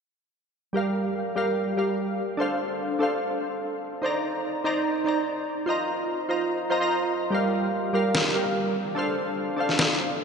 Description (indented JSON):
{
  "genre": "future bass",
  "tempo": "146 BPM",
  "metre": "4/4",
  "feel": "half-time",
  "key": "G minor",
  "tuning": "A4 = 439 Hz",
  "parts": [
    { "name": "glassy digital keys", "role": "accompaniment", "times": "0.7-10.2 s", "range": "G3 to Bb5", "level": "-24 LUFS", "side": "right 1 dB", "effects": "chorus, analog delay" },
    { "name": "electronic snare drum", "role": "drums", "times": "8.1-9.9 s", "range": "none", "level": "-26 LUFS", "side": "left 2 dB", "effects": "none" }
  ],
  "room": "wet cathedral reverb, RT60 5.1 s",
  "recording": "dreamy mix soaked in reverb, nothing above 10.5 kHz",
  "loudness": "-24 LUFS",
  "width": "side -6 dB against mid",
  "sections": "0.7-10.2 A section",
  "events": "none",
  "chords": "0.7 Gm7; 2.2 Dm7; 4.0 Cm7/Eb; 5.7 F7sus4; 7.3 Gm7; 8.8 Dm7",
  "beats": "| 0.75 1.16 1.57 1.98 | 2.39 2.80 3.21 3.63 | 4.04 4.45 4.86 5.27 | 5.68 6.09 6.50 6.91 | 7.33 7.74 8.15 8.56 | 8.97 9.38 9.79 10.20"
}